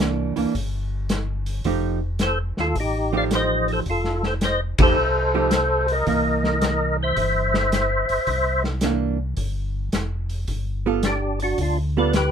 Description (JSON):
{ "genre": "soul jazz organ trio", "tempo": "109 BPM", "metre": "4/4", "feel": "swing 67% on 8ths", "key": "C mixolydian", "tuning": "A4 = 437 Hz", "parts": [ { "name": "hollow-body jazz guitar", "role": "accompaniment", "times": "0.0-12.1 s", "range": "E3 to A4", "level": "-24 LUFS", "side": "right 6 dB", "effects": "none" }, { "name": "mellow tonewheel organ", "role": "bass", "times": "0.0-12.3 s", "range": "E1 to Eb2", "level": "-26 LUFS", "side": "left 1 dB", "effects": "overdrive, chorus vibrato, slow rotary speaker" }, { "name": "vintage drum kit", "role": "drums", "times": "0.0-12.3 s", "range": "hi-hat, kick drum, ride cymbal, snare drum", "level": "-25 LUFS", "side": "left 1 dB", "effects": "none" }, { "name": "percussive tonewheel organ", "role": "melody", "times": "2.2-12.3 s", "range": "D4 to F5", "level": "-21 LUFS", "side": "left 1 dB", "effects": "slow rotary speaker, chorus vibrato" } ], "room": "light reverb", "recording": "minimal, uncompressed stereo recording", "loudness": "-20 LUFS", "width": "side -8 dB against mid", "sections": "0.0-12.3 A section", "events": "band accent 4.7", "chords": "0.0 C9; 1.7 F9; 6.1 C7; 10.5 G9" }